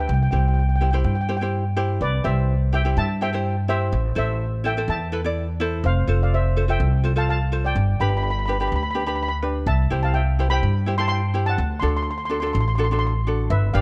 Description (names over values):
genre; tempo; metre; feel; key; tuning
calypso; 125 BPM; 4/4; straight; C major; A4 = 440 Hz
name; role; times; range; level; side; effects
steel pan; melody; 0.0-13.8 s; B4 to C6; -29 LUFS; equal; tape echo
ukulele; accompaniment; 0.0-13.8 s; D4 to D5; -30 LUFS; equal; none
upright bass; bass; 0.0-13.8 s; F1 to G2; -23 LUFS; equal; none
room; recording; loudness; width
light reverb; close, detailed microphones; -22 LUFS; mono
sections
0.0-2.0 A section; 2.0-13.8 A section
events
none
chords
0.1 C; 3.9 Am; 5.8 Fmaj7; 7.8 G; 9.7 Cmaj7; 11.6 D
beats
| 0.09 0.57 1.05 1.53 | 2.01 2.49 2.97 3.45 | 3.93 4.41 4.89 5.37 | 5.84 6.32 6.80 7.28 | 7.76 8.24 8.72 9.19 | 9.67 10.15 10.63 11.11 | 11.59 12.07 12.54 13.02 | 13.50